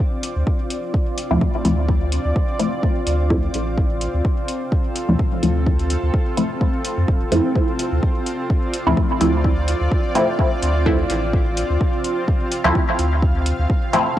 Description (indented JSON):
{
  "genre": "dub techno",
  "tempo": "127 BPM",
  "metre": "4/4",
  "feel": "swing 55% on 16ths",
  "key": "D minor",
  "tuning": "A4 = 440 Hz",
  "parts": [
    { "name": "granular cloud pad", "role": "sustained chords", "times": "0.0-14.2 s", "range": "C4 to F5", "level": "-25 LUFS", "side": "equal", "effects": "built-in reverb, sidechain pumping, cassette tape" },
    { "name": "electronic kick drum", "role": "drums", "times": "0.0-14.2 s", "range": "none", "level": "-20 LUFS", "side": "equal", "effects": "overdrive, cassette tape" },
    { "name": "electronic hi-hat", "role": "drums", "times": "0.2-14.0 s", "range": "none", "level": "-30 LUFS", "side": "left 1 dB", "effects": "cassette tape" },
    { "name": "warm sub bass", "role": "bass", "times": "0.4-13.7 s", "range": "D1 to F2", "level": "-20 LUFS", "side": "equal", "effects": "sidechain pumping" },
    { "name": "filtered dub chord stab", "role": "stabs", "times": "1.3-14.1 s", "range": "F3 to E4", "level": "-20 LUFS", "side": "equal", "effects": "phaser, sidechain pumping, cassette tape, dub echo" }
  ],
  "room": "light reverb",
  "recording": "home recording on cassette",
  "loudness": "-17 LUFS",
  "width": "side -12 dB against mid",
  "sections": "0.0-14.2 A section",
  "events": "filter sweep on synth stab 0.0-14.2",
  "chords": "0.0 Dm7",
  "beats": "| 0.00 0.47 0.94 1.41 | 1.89 2.36 2.83 3.30 | 3.77 4.25 4.72 5.19 | 5.67 6.14 6.61 7.08 | 7.55 8.03 8.50 8.97 | 9.45 9.92 10.39 10.86 | 11.33 11.81 12.28 12.75 | 13.22 13.70 14.17"
}